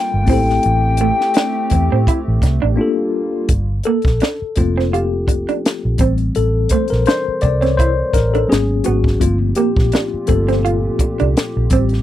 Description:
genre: R&B, neo-soul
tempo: 84 BPM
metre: 4/4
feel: swing 54% on 16ths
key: G dorian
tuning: A4 = 441 Hz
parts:
  - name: hollow clarinet-like synth lead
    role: melody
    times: 0.0-2.8 s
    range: G5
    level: -19 LUFS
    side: left 4 dB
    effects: chorus, slapback echo
  - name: mellow tine electric piano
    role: accompaniment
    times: 0.0-12.0 s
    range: E3 to D5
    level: -19 LUFS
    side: left 5 dB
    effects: medium stereo tremolo
  - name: hollow soft pad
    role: sustained chords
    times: 0.0-3.5, 9.5-12.0 s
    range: Bb2 to G4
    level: -26 LUFS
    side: right 3 dB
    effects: chorus
  - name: vintage muted fingered electric bass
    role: bass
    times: 0.1-12.0 s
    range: F1 to A2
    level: -17 LUFS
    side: equal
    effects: none
  - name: electric guitar through a small old amp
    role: second line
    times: 0.3-11.8 s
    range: A3 to F4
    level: -20 LUFS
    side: right 9 dB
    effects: wide subtle chorus
  - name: compact cocktail drum kit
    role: drums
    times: 0.3-12.0 s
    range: hi-hat, kick drum, snare drum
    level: -18 LUFS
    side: equal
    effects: none
room: little or no reverb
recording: dry, close 1970s-style studio recording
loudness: -14 LUFS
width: side -12 dB against mid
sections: 0.0-3.5 A section; 3.5-12.0 B section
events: break 2.8-3.5; tine electric piano solo 3.5-12.0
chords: 0.3 Am7; 2.8 Gm7; 3.5 Gm11; 6.0 Am7; 8.5 Abm11; 9.2 Gm11

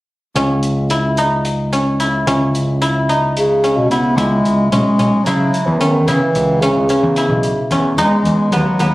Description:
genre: progressive instrumental, band music in an uneven meter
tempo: 220 BPM (eighths)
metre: 7/8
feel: straight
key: C# minor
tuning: A4 = 436 Hz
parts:
  - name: guzheng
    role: arpeggios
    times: 0.4-8.9 s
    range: B3 to E4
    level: -17 LUFS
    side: equal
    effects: none
  - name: overdriven picked electric bass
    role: bass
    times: 0.4-8.9 s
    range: B1 to C#3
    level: -18 LUFS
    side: equal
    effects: none
  - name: hi-hat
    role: drums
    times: 0.4-8.9 s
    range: none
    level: -28 LUFS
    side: equal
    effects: none
  - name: warm bass clarinet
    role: melody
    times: 3.3-8.9 s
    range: B2 to B3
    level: -15 LUFS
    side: equal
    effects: digital delay
room: light reverb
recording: recorded on a phone in the room, studio reverb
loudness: -13 LUFS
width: side -18 dB against mid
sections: 0.4-4.2 A section; 4.2-8.9 B section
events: none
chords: 0.4 C#m; 8.0 Emaj9

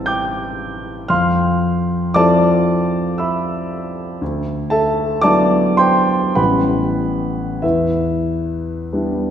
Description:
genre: classical, impressionist solo piano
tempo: 46-60 BPM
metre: 3/4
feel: rubato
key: unclear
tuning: A4 = 440 Hz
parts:
  - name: clear concert grand piano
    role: solo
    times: 0.0-9.3 s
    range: A1 to A6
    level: -15 LUFS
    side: equal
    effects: none
room: wet concert hall reverb, RT60 2.1 s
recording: heard from further back in the room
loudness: -15 LUFS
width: side -9 dB against mid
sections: 0.0-9.3 A section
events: none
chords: 0.0 Am9; 1.1 Fmaj7; 4.2 D69; 6.4 A9; 7.6 Em7

